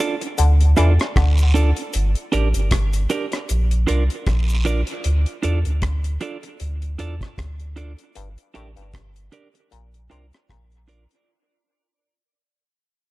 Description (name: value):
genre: dub reggae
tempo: 77 BPM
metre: 4/4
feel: swing 57% on 16ths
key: D minor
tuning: A4 = 440 Hz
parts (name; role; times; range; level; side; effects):
- clean electric guitar; accompaniment; 0.0-11.0 s; D4 to D5; -25 LUFS; right 4 dB; spring reverb, dub echo
- deep reggae drum kit; drums; 0.2-11.3 s; hi-hat, kick drum, rim click; -25 LUFS; equal; none
- auto-wah clav; riff; 0.4-1.4, 8.2-10.7 s; G2 to E3; -29 LUFS; left 7 dB; overdrive, dub echo
- warm sub bass; bass; 0.4-11.1 s; G1 to E2; -18 LUFS; equal; none
- cabasa and guiro; percussion; 0.4-4.9 s; none; -36 LUFS; right 2 dB; dub echo
room: small room ambience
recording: none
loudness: -17 LUFS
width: side -19 dB against mid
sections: 0.0-11.3 A section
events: fade-out 0.0-11.3; break 1.9-11.3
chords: 0.0 Dm; 1.9 Gm; 3.5 Bb; 5.0 Dm; 8.2 Gm; 9.7 Bb